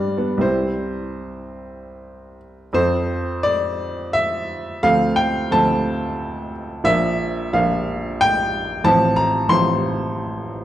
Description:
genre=classical, romantic character piece for solo piano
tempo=75-95 BPM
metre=3/4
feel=rubato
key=F major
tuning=A4 = 439 Hz
part: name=clear upright piano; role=solo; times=0.0-10.6 s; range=A1 to C6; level=-18 LUFS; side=equal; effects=none
room=wet recital hall reverb, RT60 1.8 s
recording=none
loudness=-18 LUFS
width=side -12 dB against mid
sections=0.0-2.7 A section; 2.7-10.6 B section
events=none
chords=0.4 C; 2.7 F; 4.8 Dm7; 6.8 Bb; 8.8 F/A

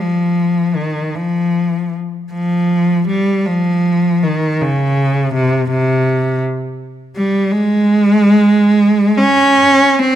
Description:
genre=classical, free, expressive piece for unaccompanied cello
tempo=free time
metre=none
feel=none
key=F minor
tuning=A4 = 440 Hz
part: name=clear cello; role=solo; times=0.0-10.2 s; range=C3 to Db4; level=-12 LUFS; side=equal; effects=none
room=light reverb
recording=close, detailed microphones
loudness=-12 LUFS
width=side -11 dB against mid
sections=0.0-10.2 A section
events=none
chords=none

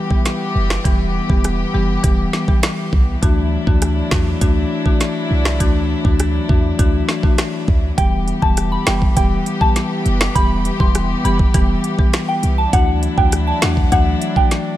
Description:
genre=dancehall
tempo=101 BPM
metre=4/4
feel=straight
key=E minor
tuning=A4 = 440 Hz
part: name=warm studio string section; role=sustained chords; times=0.0-14.8 s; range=E3 to G4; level=-26 LUFS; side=left 1 dB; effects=sidechain pumping
part: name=marimba with medium hard mallets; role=accompaniment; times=0.1-14.6 s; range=E3 to G4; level=-21 LUFS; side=left 3 dB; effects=none
part: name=island pop drum kit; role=drums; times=0.1-14.7 s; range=finger snaps, hi-hat, kick drum, rim click, snare drum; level=-16 LUFS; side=right 1 dB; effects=none
part: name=clean 808-style bass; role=bass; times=0.6-14.2 s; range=E1 to E2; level=-19 LUFS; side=equal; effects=none
part: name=soft synth bell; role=melody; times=8.0-14.5 s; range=F#5 to C6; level=-21 LUFS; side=equal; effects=chorus, phaser
room=little or no reverb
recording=none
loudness=-14 LUFS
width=side -14 dB against mid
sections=0.0-8.0 A section; 8.0-14.8 B section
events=none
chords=0.0 Em; 3.2 Dadd9; 8.0 Em; 12.7 Dadd9

